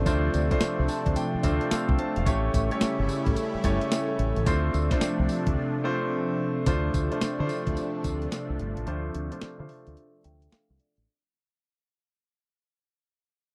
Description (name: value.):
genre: R&B, new jack swing.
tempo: 109 BPM.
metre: 4/4.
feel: swing 63% on 16ths.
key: D minor.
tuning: A4 = 439 Hz.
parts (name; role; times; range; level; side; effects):
clear concert grand piano; accompaniment; 0.0-11.1 s; A3 to A5; -32 LUFS; equal; low-pass filter.
lush unison pad; sustained chords; 0.0-11.0 s; C3 to E4; -33 LUFS; equal; chorus, phaser, low-pass filter.
deep dub fingered electric bass; bass; 0.0-11.1 s; E1 to D3; -30 LUFS; equal; none.
clean 12-bit digital drum machine; drums; 0.1-11.1 s; hi-hat, kick drum, snare drum, tambourine; -30 LUFS; equal; none.
room: little or no reverb.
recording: dry, close 1970s-style studio recording.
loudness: -27 LUFS.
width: mono.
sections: 0.0-6.7 A section; 6.7-11.1 B section.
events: grand piano fill 0.6-2.3, 10.0-11.1; break 5.6-6.7, 8.9-11.1; fade-out 6.7-11.1; filter sweep 6.7-11.1.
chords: 0.0 Dm7; 2.3 A7; 4.5 Dm7.